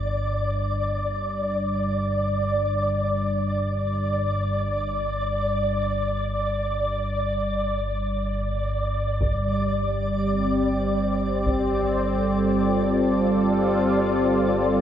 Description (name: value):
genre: dark ambient drone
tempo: free time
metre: none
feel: none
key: unclear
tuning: A4 = 441 Hz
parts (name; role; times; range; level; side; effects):
- analog drone; drone; 0.0-14.8 s; G1 to G2; -27 LUFS; equal; wide subtle chorus
- flickering grainy texture; texture; 0.0-14.8 s; D5; -26 LUFS; equal; built-in reverb
- sweeping resonant pad; sustained chords; 9.2-14.8 s; G3 to A4; -21 LUFS; equal; chorus
- taiko ensemble; percussion; 9.2-11.7 s; none; -32 LUFS; equal; none
room: wet cathedral reverb, RT60 6.0 s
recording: nothing above 11.0 kHz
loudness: -22 LUFS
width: side -10 dB against mid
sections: 0.0-14.8 A section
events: filter sweep on synth drone 0.0-14.8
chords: 0.0 Gsus2